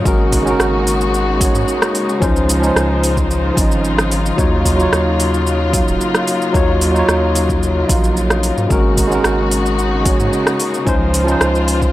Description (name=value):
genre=sunset chillout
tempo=111 BPM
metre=4/4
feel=straight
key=Eb dorian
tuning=A4 = 439 Hz
part: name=tine electric piano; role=accompaniment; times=0.0-11.9 s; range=F3 to F5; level=-17 LUFS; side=equal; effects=overdrive, auto-pan, analog delay
part: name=rich studio string section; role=sustained chords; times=0.0-11.9 s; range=Db3 to C5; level=-21 LUFS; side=left 2 dB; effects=none
part: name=round analog bass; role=bass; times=0.0-11.9 s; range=Eb1 to Ab2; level=-19 LUFS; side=equal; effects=none
part: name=deep house drum kit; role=drums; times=0.1-11.9 s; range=cabasa, hi-hat, rim click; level=-20 LUFS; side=equal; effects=overdrive
part: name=electronic kick drum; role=drums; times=0.1-11.9 s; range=none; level=-18 LUFS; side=equal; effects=overdrive
room=little or no reverb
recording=dry, gritty hardware recording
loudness=-13 LUFS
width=side -15 dB against mid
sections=0.0-11.9 A section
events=none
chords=0.1 Ab9sus4; 2.2 Dbmaj9; 4.4 Ebm9; 8.7 Ab9sus4; 10.9 Dbmaj9